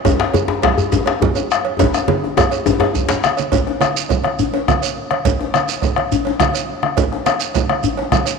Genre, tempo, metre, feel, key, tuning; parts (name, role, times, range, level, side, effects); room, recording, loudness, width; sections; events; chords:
west african traditional, West African drum ensemble; 139 BPM (dotted quarters); 12/8; straight
cowbell; percussion; 0.0-8.4 s; -24 LUFS; right 8 dB
djembe; percussion; 0.0-3.2 s; -20 LUFS; left 4 dB
bombo; percussion; 0.1-8.3 s; -19 LUFS; left 2 dB
congas; percussion; 0.1-8.3 s; -23 LUFS; right 9 dB
djembe; percussion; 0.1-8.4 s; -23 LUFS; left 7 dB
shekere; percussion; 0.1-8.4 s; -26 LUFS; right 7 dB
wet plate reverb, RT60 3.3 s; 1960s-style stereo with parts hard left and right; -15 LUFS; side -5 dB against mid
0.0-3.5 A section; 3.5-8.4 B section
drum fill 1.8-3.5